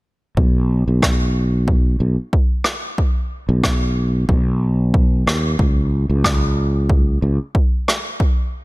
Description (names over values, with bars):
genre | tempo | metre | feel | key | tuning
sunset chillout | 92 BPM | 4/4 | swing 55% on 16ths | unclear | A4 = 440 Hz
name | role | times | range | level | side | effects
sustaining fretless electric bass | bass | 0.4-7.4 s | B1 to D#2 | -17 LUFS | equal | tube saturation
electronic kick drum | drums | 0.4-8.3 s | none | -17 LUFS | equal | none
rim click | drums | 1.0-8.0 s | none | -22 LUFS | equal | none
room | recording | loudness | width
little or no reverb | none | -15 LUFS | side -21 dB against mid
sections
0.4-8.6 A section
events
none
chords
none